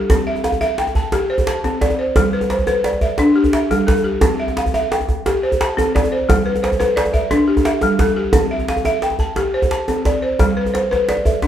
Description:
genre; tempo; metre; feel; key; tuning
west african traditional, West African string and xylophone music; 117 BPM (dotted quarters); 12/8; straight; C major; A4 = 440 Hz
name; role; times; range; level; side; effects
balafon; arpeggios; 0.0-11.5 s; G3 to A5; -17 LUFS; left 1 dB; none
djembe; percussion; 0.1-11.5 s; none; -18 LUFS; right 1 dB; none
room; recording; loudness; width
wet large studio reverb, RT60 1.2 s; band playing live in one room; -15 LUFS; side -10 dB against mid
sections
0.0-11.5 A section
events
none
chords
0.1 C; 2.2 G; 4.2 C; 6.3 G; 8.3 C; 10.4 G

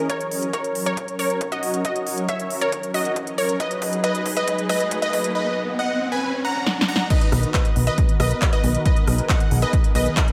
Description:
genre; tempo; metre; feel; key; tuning
uplifting trance; 137 BPM; 4/4; straight; unclear; A4 = 439 Hz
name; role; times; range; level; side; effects
supersaw stab; melody; 0.0-10.3 s; F#4 to A#5; -27 LUFS; equal; sidechain pumping, low-pass filter, dub echo
unison pluck; second line; 0.0-10.3 s; C#5 to F#5; -32 LUFS; equal; sidechain pumping, dub echo
lush unison pad; sustained chords; 0.0-10.3 s; D#3 to C#5; -31 LUFS; equal; chorus, vintage 12-bit sampler grit, sidechain pumping
electronic kick drum; drums; 0.1-10.3 s; none; -23 LUFS; equal; high-pass filter on kick, high-pass filter on room
techno drum kit; drums; 0.1-10.3 s; crash cymbal, handclaps, hi-hat, rim click, snare drum; -29 LUFS; equal; none
riser; sound effects; 2.8-7.1 s; none; -34 LUFS; equal; none
plucky analog bass; bass; 7.3-10.1 s; B1; -22 LUFS; equal; sidechain pumping
room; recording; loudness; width
wet digital room reverb, RT60 0.9 s; none; -22 LUFS; mono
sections
0.0-7.1 A section; 7.1-10.3 B section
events
build-up 0.0-7.1; filter sweep on supersaw synth 0.0-7.1; drum fill 0.1-5.4, 6.7-7.1; riser 2.8-7.1; drop 7.1-10.3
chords
0.1 F#; 3.6 G#m7; 7.1 Bmaj7

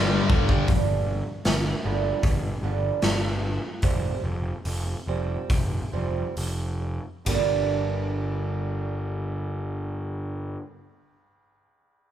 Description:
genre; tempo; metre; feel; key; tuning
quiet-loud alternative rock; 66-78 BPM; 4/4; straight; G minor; A4 = 440 Hz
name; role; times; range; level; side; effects
ensemble organ-string; sustained chords; 0.0-0.7 s; none; barely audible; none; none
distorted electric guitar; riff; 0.0-0.7 s; G2 to Bb3; -30 LUFS; right 4 dB; overdrive
thick fuzz guitar; riff; 0.0-0.7 s; G2 to Bb3; -29 LUFS; left 6 dB; distortion
fuzz picked electric bass; bass; 0.0-10.6 s; F1 to G1; -28 LUFS; equal; overdrive
raw garage drum kit; drums; 0.3-7.5 s; hi-hat, kick drum, ride cymbal, snare drum; -26 LUFS; equal; none
fingerpicked acoustic archtop guitar; arpeggios; 0.7-10.8 s; G2 to G4; -30 LUFS; right 9 dB; none
room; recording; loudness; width
moderate large studio reverb, RT60 1.4 s; band playing live in one room; -24 LUFS; side -10 dB against mid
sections
0.7-7.3 A section; 7.3-10.9 B section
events
drum fill 0.0-0.7; slowing down 0.7-7.3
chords
0.0 Gm; 0.7 G5; 3.8 Fsus2; 7.3 Gm

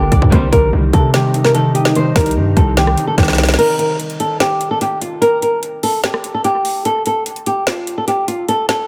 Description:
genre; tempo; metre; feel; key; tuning
hip hop, trap; 147 BPM; 4/4; half-time; unclear; A4 = 440 Hz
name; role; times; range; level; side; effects
flamenco guitar; melody; 0.0-8.9 s; F4 to C5; -19 LUFS; equal; low-pass filter, dub echo
concert harp; accompaniment; 0.0-5.7 s; D3 to Eb5; -23 LUFS; equal; low-pass filter, dub echo
glassy FM pad; sustained chords; 0.0-3.6 s; C3 to Bb4; -28 LUFS; equal; none
hard-hitting 808-style bass; bass; 0.0-3.6 s; G1 to C3; -18 LUFS; equal; none
trap drum kit; drums; 0.1-8.8 s; crash cymbal, hi-hat, kick drum, rim click, snare drum; -20 LUFS; equal; dub echo
rich studio string section; stabs; 0.3-0.6 s; Eb2 to G3; -27 LUFS; equal; none
room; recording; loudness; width
light reverb, small room ambience; echo-heavy mix; -15 LUFS; mono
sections
0.0-3.6 A section; 3.6-8.9 B section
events
drum fill 3.2-3.6; break 3.6-8.9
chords
0.3 Cm; 3.6 N.C.

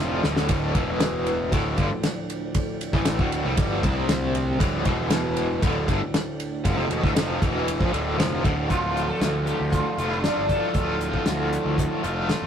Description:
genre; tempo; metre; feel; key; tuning
psychedelic rock; 117 BPM; 4/4; straight; D minor; A4 = 440 Hz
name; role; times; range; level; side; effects
string machine, cellos; sustained chords; 0.0-12.5 s; C3 to A5; -34 LUFS; right 3 dB; ensemble chorus
biting overdriven guitar; riff; 0.0-12.5 s; D2 to F4; -26 LUFS; equal; tremolo
fuzz picked electric bass; bass; 0.0-12.5 s; D1 to D2; -28 LUFS; equal; overdrive
pedal harmonium; drone; 0.0-8.8 s; D2 to A2; -34 LUFS; equal; none
damped 70s drum kit; drums; 0.2-12.4 s; hi-hat, kick drum, ride cymbal, snare drum; -25 LUFS; equal; none
sitar; melody; 8.7-11.5 s; D4 to A4; -29 LUFS; equal; none
room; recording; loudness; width
light reverb; rough rehearsal-room recording, tube saturation; -21 LUFS; side -8 dB against mid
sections
0.0-8.7 A section; 8.7-12.5 B section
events
drum fill 0.0-0.5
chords
0.0 Dm; 0.8 E5; 1.5 Dm; 3.8 C5; 4.6 Dm; 4.9 E5; 5.6 Dm

